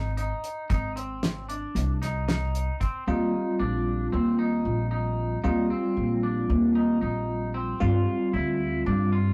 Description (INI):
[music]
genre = progressive instrumental, band music in an uneven meter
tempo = 228 BPM (eighths)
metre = 9/8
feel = straight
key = unclear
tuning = A4 = 440 Hz
[part]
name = twangy electric guitar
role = arpeggios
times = 0.0-9.3 s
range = C4 to F4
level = -36 LUFS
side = equal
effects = none
[part]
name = upright bass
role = bass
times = 0.0-9.3 s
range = Ab1 to G2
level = -28 LUFS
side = equal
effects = none
[part]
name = damped 70s drum kit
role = drums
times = 0.2-2.9 s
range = hi-hat, kick drum, snare drum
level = -31 LUFS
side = equal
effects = none
[part]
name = bell-like tine electric piano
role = accompaniment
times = 3.1-9.3 s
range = G3 to F4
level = -30 LUFS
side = equal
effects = none
[sound]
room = wet booth ambience, RT60 0.3 s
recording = rough rehearsal-room recording, warm saturation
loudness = -26 LUFS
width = mono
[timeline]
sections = 0.0-3.1 A section; 3.1-9.3 B section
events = none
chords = 0.0 Ab; 3.1 Eb6; 7.8 G5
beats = 0.17 0.44 | 0.70 0.96 1.23 1.49 1.75 2.02 2.28 2.55 2.81 | 3.07 3.34 3.60 3.86 4.13 4.39 4.65 4.92 5.18 | 5.44 5.71 5.97 6.23 6.49 6.76 7.02 7.28 7.55 | 7.81 8.07 8.34 8.60 8.86 9.13